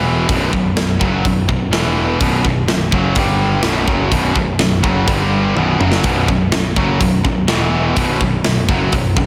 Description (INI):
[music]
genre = heavy metal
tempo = 125 BPM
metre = 4/4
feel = straight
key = B minor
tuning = A4 = 440 Hz
[part]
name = heavy high-gain guitar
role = riff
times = 0.0-9.3 s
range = B1 to G3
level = -22 LUFS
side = equal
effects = distortion
[part]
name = tight distorted guitar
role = riff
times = 0.0-9.3 s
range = B1 to G3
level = -21 LUFS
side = equal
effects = distortion, slapback echo
[part]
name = fuzz picked electric bass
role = bass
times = 0.0-9.3 s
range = B0 to G1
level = -23 LUFS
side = equal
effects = overdrive
[part]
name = tight metal drum kit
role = drums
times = 0.3-9.3 s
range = hi-hat, kick drum, snare drum, toms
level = -21 LUFS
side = equal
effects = none
[sound]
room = moderate concert hall reverb, RT60 2.0 s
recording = big arena sound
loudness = -16 LUFS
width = mono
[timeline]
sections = 0.0-9.3 A section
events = drum fill 5.6-6.0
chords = 0.3 B5; 1.7 E5; 2.2 B5; 3.2 G5; 3.6 B5; 5.1 G5; 5.6 B5; 7.5 E5; 8.0 B5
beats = | 0.29 0.77 1.25 1.73 | 2.21 2.69 3.17 3.65 | 4.13 4.61 5.09 5.57 | 6.05 6.53 7.01 7.49 | 7.96 8.45 8.92